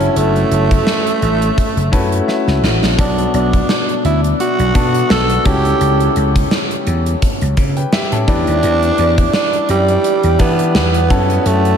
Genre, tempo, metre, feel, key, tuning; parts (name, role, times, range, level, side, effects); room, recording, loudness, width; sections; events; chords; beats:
1980s-style pop; 85 BPM; 4/4; swing 55% on 16ths; B minor; A4 = 440 Hz
growling tenor saxophone; melody; 0.0-11.8 s; G3 to A4; -17 LUFS; right 3 dB; tape echo
bright grand piano; accompaniment; 0.0-11.8 s; B2 to A5; -19 LUFS; left 3 dB
vintage slap bass; bass; 0.0-11.7 s; F#1 to E3; -16 LUFS; equal
gated 80s drum kit; drums; 0.0-11.8 s; hi-hat, kick drum, snare drum; -18 LUFS; equal
wet cathedral reverb, RT60 6.7 s; dreamy mix soaked in reverb; -12 LUFS; side -7 dB against mid
0.0-11.8 A section
grand piano fill 1.6-3.0; drum fill 2.3-3.0
0.0 F#m7; 3.0 Bm7; 5.5 A7/C#; 8.3 Em7; 11.1 F#m7
| 0.16 0.87 1.57 2.28 | 2.99 3.69 4.40 5.10 | 5.81 6.51 7.22 7.93 | 8.63 9.34 10.04 10.75 | 11.46